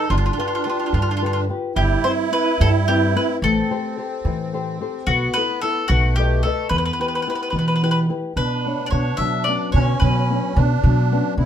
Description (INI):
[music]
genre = italian folk, Italian serenade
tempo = 73 BPM (dotted quarters)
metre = 6/8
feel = straight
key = E minor, B minor from 8.4 s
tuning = A4 = 438 Hz
[part]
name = bowl-back mandolin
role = melody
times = 0.0-10.6 s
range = F4 to E5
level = -23 LUFS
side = left 2 dB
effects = none
[part]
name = musette accordion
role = second line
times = 0.0-11.5 s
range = A3 to E4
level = -25 LUFS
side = right 6 dB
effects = none
[part]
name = nylon-string guitar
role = accompaniment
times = 0.0-11.5 s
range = B2 to D#5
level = -26 LUFS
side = left 6 dB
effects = none
[part]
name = upright bass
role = bass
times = 0.1-11.5 s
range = G1 to E3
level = -19 LUFS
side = equal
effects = none
[sound]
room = moderate studio reverb, RT60 0.6 s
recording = minimal, uncompressed stereo recording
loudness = -18 LUFS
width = side -9 dB against mid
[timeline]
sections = 0.0-8.4 A section; 8.4-11.5 B section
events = none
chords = 0.1 G7; 1.8 Cmaj7/G; 3.4 Am7; 5.1 B7sus4; 5.9 B7; 6.7 Em; 8.4 Bmadd9